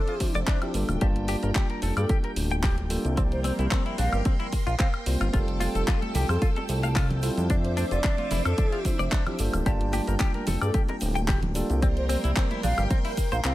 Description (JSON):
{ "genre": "nu-disco, nu disco", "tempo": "111 BPM", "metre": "4/4", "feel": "swing 54% on 16ths", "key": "unclear", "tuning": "A4 = 443 Hz", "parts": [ { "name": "mellow hollow concert flute", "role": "melody", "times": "0.0-13.5 s", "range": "A4 to F5", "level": "-34 LUFS", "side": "right 1 dB", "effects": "tape echo" }, { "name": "tine electric piano", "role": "accompaniment", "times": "0.0-13.2 s", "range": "F3 to A5", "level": "-32 LUFS", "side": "equal", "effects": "sidechain pumping, tape echo" }, { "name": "string machine, full ensemble", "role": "sustained chords", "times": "0.0-13.5 s", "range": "A4 to E6", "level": "-37 LUFS", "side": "right 1 dB", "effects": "phaser, ensemble chorus, sidechain pumping" }, { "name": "direct-recorded clean electric guitar", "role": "riff", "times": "0.1-13.5 s", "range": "C4 to G5", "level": "-34 LUFS", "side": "left 3 dB", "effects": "wide subtle chorus, tape echo" }, { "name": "house drum kit", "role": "drums", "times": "0.1-13.5 s", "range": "handclaps, hi-hat, shaker, woodblock", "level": "-34 LUFS", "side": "equal", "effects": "none" }, { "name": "electronic kick drum", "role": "drums", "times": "0.2-13.3 s", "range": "none", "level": "-25 LUFS", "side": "equal", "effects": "none" }, { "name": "fat analog bass", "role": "bass", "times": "0.3-13.5 s", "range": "D1 to G2", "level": "-26 LUFS", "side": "equal", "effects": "tube saturation" }, { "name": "egg shaker, congas and bongos", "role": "percussion", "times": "5.3-13.5 s", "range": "none", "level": "-37 LUFS", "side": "right 2 dB", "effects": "none" } ], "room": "digital ambience", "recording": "none", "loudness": "-23 LUFS", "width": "side -16 dB against mid", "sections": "0.0-13.5 A section", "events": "none", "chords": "0.0 Dm9/F; 0.7 Gm9; 3.2 C7sus4; 5.3 Fmaj9; 7.5 Dm9/F; 9.4 Gm9; 11.8 C7sus4" }